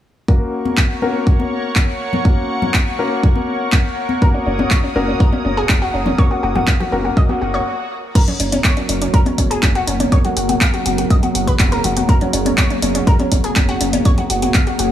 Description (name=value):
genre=progressive house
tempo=122 BPM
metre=4/4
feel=straight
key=unclear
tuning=A4 = 440 Hz
part: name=evolving wavetable pad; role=sustained chords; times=0.5-14.9 s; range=C#3 to D#6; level=-23 LUFS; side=right 1 dB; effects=chorus, built-in reverb, sidechain pumping
part: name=warm concert grand piano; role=stabs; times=0.3-7.7 s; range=A#3 to A#4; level=-23 LUFS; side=left 3 dB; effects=sidechain pumping, low-pass filter, dub echo
part: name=electronic kick drum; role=drums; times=0.3-14.6 s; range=none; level=-14 LUFS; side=equal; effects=none
part: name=congas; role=percussion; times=0.7-14.5 s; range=none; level=-24 LUFS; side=left 4 dB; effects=sidechain pumping on perc
part: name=pop drum kit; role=drums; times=0.8-14.9 s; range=crash cymbal, handclaps, hi-hat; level=-21 LUFS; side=equal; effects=overdrive, sidechain pumping on hats, sidechain pumping on cymbals
part: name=analog pluck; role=arpeggios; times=4.2-14.9 s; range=C#4 to E#5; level=-21 LUFS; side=equal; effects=chorus, sidechain pumping, dub echo
part: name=saturated sub bass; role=bass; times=4.5-14.9 s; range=F#1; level=-24 LUFS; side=equal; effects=sidechain pumping
part: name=swell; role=sound effects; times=7.4-8.2 s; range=none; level=-27 LUFS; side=left 2 dB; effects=none
room=light reverb, digital ambience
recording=small room ambience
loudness=-14 LUFS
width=side -11 dB against mid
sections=0.3-8.2 A section; 8.2-14.9 B section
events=swell 7.4-8.2; stop 7.7-8.2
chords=0.3 F#